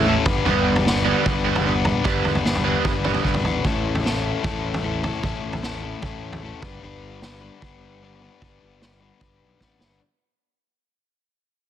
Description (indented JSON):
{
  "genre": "indie rock",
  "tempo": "151 BPM",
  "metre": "4/4",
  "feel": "straight",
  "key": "unclear",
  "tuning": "A4 = 439 Hz",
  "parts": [
    { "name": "overdriven electric guitar", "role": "riff", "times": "0.0-10.0 s", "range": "A2 to B4", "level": "-25 LUFS", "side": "left 8 dB", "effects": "none" },
    { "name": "overdriven electric guitar", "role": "riff", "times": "0.0-3.3 s", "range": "D3 to E4", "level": "-24 LUFS", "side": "right 11 dB", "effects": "analog chorus, slapback echo" },
    { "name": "fuzz fingered electric bass", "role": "bass", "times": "0.0-10.0 s", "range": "G1 to B1", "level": "-27 LUFS", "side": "right 1 dB", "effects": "overdrive" },
    { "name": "vintage drum kit", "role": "drums", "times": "0.3-9.9 s", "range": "kick drum, snare drum, toms", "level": "-25 LUFS", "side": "right 1 dB", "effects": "soft clipping on snare" }
  ],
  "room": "small room reverb",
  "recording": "dense, heavily limited modern master",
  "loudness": "-19 LUFS",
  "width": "side -10 dB against mid",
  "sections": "0.0-10.0 A section",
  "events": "fade-out 0.0-10.0; drum fill 9.6-10.0",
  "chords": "0.3 G; 3.6 A; 6.6 G",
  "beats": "0.06 | 0.46 0.86 1.25 1.65 | 2.05 2.45 2.85 3.25 | 3.64 4.04 4.44 4.84 | 5.24 5.63 6.03 6.43 | 6.83 7.22 7.62 8.02 | 8.42 8.81 9.21 9.61"
}